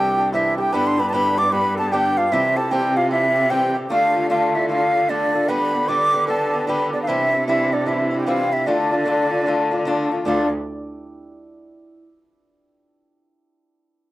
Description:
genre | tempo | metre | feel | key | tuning
celtic folk, Celtic hornpipe | 151 BPM | 4/4 | swing 64% on 8ths | D dorian | A4 = 440 Hz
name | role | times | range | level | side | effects
bright wooden flute | melody | 0.0-10.5 s | D5 to D6 | -20 LUFS | equal | slapback echo
hammered dulcimer | second line | 0.0-12.0 s | D4 to D5 | -27 LUFS | right 3 dB | slapback echo
warm duduk | second line | 0.0-10.5 s | D4 to D5 | -31 LUFS | left 2 dB | slapback echo
fingerpicked swing-style acoustic guitar | accompaniment | 0.0-10.5 s | G2 to G4 | -24 LUFS | left 2 dB | slapback echo
rich cello | bass | 0.0-10.5 s | C2 to D3 | -26 LUFS | equal | none
room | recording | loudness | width
little or no reverb | recorded outdoors, with no room sound | -17 LUFS | side -16 dB against mid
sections
0.0-10.3 A section; 10.3-11.8 B section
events
none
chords
0.0 Cadd9; 0.7 G; 2.3 C; 3.9 Dm; 5.5 G/D; 7.1 C; 8.7 Dm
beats
0.33 | 0.73 1.13 1.52 1.92 | 2.32 2.71 3.11 3.51 | 3.90 4.30 4.70 5.09 | 5.49 5.89 6.29 6.68 | 7.08 7.48 7.87 8.27 | 8.67 9.07 9.46 9.86 | 10.26 10.66 11.05 11.45

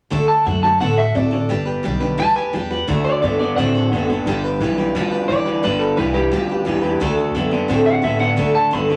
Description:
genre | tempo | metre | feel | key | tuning
rockabilly | 174 BPM | 4/4 | straight | D mixolydian | A4 = 440 Hz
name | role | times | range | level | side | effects
picked steel-string acoustic guitar | accompaniment | 0.1-9.0 s | D3 to B4 | -24 LUFS | equal | none
electric guitar through a small old amp | riff | 0.1-9.0 s | G2 to C4 | -23 LUFS | equal | none
upright bass | bass | 0.1-9.0 s | F#1 to A2 | -27 LUFS | equal | none
electric guitar through a small old amp | melody | 0.3-9.0 s | G4 to B5 | -22 LUFS | equal | none
room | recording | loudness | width
moderate large studio reverb, RT60 0.9 s | none | -18 LUFS | mono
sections
0.1-2.9 A section; 2.9-9.0 B section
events
none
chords
0.1 D; 1.5 G; 2.9 D; 4.3 G; 7.0 D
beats
| 0.12 0.47 0.81 1.16 | 1.50 1.85 2.19 2.54 | 2.88 3.23 3.57 3.91 | 4.26 4.60 4.95 5.29 | 5.63 5.98 6.32 6.67 | 7.01 7.36 7.70 8.04 | 8.39 8.73

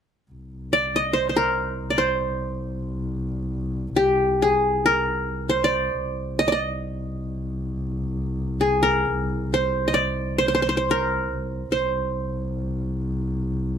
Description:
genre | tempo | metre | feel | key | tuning
Turkish makam ensemble | free time | none | none | C makam nihavent | A4 = 440 Hz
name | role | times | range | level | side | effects
dark double bass | drone | 0.3-13.8 s | C2 | -28 LUFS | left 1 dB | none
qanun | melody | 0.7-13.0 s | G4 to Eb5 | -21 LUFS | equal | none
room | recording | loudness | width
light reverb | close, detailed microphones, lossy compression artefacts | -21 LUFS | side -8 dB against mid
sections
0.3-13.8 A section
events
none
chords
none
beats
free time

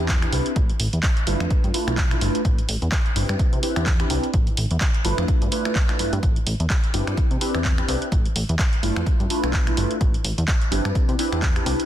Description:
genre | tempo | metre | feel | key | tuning
filtered disco house | 127 BPM | 4/4 | swing 57% on 16ths | A minor | A4 = 440 Hz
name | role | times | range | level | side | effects
funky polysynth comp | accompaniment | 0.0-11.9 s | A3 to B4 | -26 LUFS | equal | chorus, phaser, sidechain pumping, low-pass filter
plucky analog bass | bass | 0.0-11.7 s | G1 to C3 | -25 LUFS | equal | tube saturation, sidechain pumping, low-pass filter
electronic kick drum | drums | 0.1-11.5 s | none | -21 LUFS | equal | none
punchy analog drum machine | drums | 0.1-11.9 s | finger snaps, handclaps, hi-hat | -28 LUFS | right 1 dB | sidechain pumping on hats, sidechain pumping on cymbals
room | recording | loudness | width
digital ambience | dense, heavily limited modern master | -19 LUFS | side -12 dB against mid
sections
0.0-11.9 A section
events
filter sweep 0.0-11.9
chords
0.0 Cmaj7; 0.6 A5; 1.3 G13; 2.5 Am9; 3.4 Cmaj7; 4.3 A5; 5.0 G13; 6.2 Am9; 7.2 Cmaj7; 8.1 A5; 8.8 G13; 10.0 Am9; 11.0 Cmaj7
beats
0.09 | 0.56 1.03 1.51 1.98 | 2.45 2.92 3.40 3.87 | 4.34 4.81 5.29 5.76 | 6.23 6.70 7.17 7.65 | 8.12 8.59 9.06 9.54 | 10.01 10.48 10.96 11.43

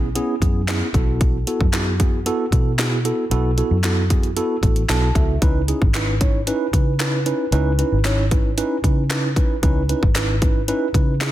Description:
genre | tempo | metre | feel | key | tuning
dance-pop | 114 BPM | 4/4 | straight | unclear | A4 = 439 Hz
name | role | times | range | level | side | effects
mellow tine electric piano | accompaniment | 0.0-11.3 s | B3 to A5 | -23 LUFS | right 2 dB | medium stereo tremolo, sidechain pumping
vintage muted fingered electric bass | bass | 0.0-11.3 s | G#1 to C#3 | -21 LUFS | equal | sidechain pumping
house drum kit | drums | 0.2-11.3 s | handclaps, hi-hat, kick drum, snare drum | -20 LUFS | equal | soft clipping on snare
room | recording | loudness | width
light reverb, digital ambience | dense, heavily limited modern master | -17 LUFS | side -14 dB against mid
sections
0.0-11.3 A section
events
tine electric piano fill 4.6-5.4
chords
0.0 E6; 0.9 B7sus4; 5.4 C#m9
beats
0.16 0.68 | 1.21 1.74 2.26 2.79 | 3.31 3.84 4.37 4.89 | 5.42 5.95 6.47 7.00 | 7.52 8.05 8.58 9.10 | 9.63 10.16 10.68 11.21

